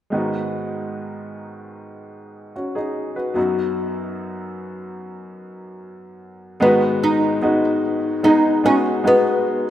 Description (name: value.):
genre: pop.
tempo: 74 BPM.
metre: 4/4.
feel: straight.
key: unclear.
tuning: A4 = 440 Hz.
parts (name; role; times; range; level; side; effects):
bright upright piano; accompaniment; 0.1-9.7 s; F#2 to B4; -22 LUFS; left 1 dB; none.
oud; melody; 6.6-9.6 s; B3 to D#4; -16 LUFS; equal; none.
room: wet lush hall reverb, RT60 2.3 s.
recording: rough home demo mix.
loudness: -17 LUFS.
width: side -12 dB against mid.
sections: 0.1-6.6 A section; 6.6-9.7 B section.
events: none.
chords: 0.1 G#m7; 3.4 B/F#; 6.6 G#m7.